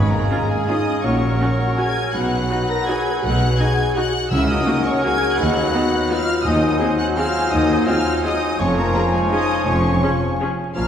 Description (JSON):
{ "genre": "classical, orchestral ballroom waltz", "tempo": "167 BPM", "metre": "3/4", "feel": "uneven beats, rubato", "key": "Db major from 6.5 s", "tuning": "A4 = 439 Hz", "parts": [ { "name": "rich studio violin section", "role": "melody", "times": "0.0-10.9 s", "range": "G#5 to A#6", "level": "-26 LUFS", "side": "left 2 dB", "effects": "none" }, { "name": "clear clarinet", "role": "second line", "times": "0.0-10.9 s", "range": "C#4 to F4", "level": "-30 LUFS", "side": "left 1 dB", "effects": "none" }, { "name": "mellow large flute ensemble", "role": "second line", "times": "0.0-10.9 s", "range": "D#5 to Bb5", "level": "-28 LUFS", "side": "left 2 dB", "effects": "none" }, { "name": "rich studio violin section", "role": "second line", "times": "0.0-10.9 s", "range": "G#4 to A#5", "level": "-30 LUFS", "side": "left 1 dB", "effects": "none" }, { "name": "warm cor anglais", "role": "second line", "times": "0.0-10.9 s", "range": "G#4 to Db5", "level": "-28 LUFS", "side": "right 1 dB", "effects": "none" }, { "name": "warm bassoon", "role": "accompaniment", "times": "0.0-10.9 s", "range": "F3 to G#3", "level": "-27 LUFS", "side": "right 2 dB", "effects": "none" }, { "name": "dark French horn section", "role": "sustained chords", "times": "0.0-10.9 s", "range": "G#3 to A#4", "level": "-24 LUFS", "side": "left 4 dB", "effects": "none" }, { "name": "clear studio cello section", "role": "bass", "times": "0.0-10.9 s", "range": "D#2 to C#3", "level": "-24 LUFS", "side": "right 1 dB", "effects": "none" }, { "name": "warm studio double bass section", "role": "bass", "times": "0.0-10.9 s", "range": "F1 to D#2", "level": "-24 LUFS", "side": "right 1 dB", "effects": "none" }, { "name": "timpani", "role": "percussion", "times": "0.0-0.5, 4.3-4.8 s", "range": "G#2 to C#3", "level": "-27 LUFS", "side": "left 1 dB", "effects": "none" }, { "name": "bright studio viola section", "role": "accompaniment", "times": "0.3-10.5 s", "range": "A#3 to Ab4", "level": "-29 LUFS", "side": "right 1 dB", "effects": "none" } ], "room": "wet concert hall reverb, RT60 1.9 s", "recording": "heard from further back in the room, vinyl crackle", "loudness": "-16 LUFS", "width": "side -8 dB against mid", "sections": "0.0-10.9 A section", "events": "none", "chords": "0.0 C#/G#; 1.0 F#/A#; 2.1 B; 4.3 F#/C#; 5.4 B/D#; 6.5 Ab7/Eb; 8.6 Db/F", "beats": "0.30 0.69 | 1.04 1.40 1.78 | 2.13 2.50 2.88 | 3.23 3.59 3.96 | 4.31 4.67 5.04 | 5.39 5.74 6.10 | 6.45 6.80 7.17 | 7.52 7.88 8.24 | 8.60 8.95 9.32 | 9.67 10.03 10.41 | 10.76" }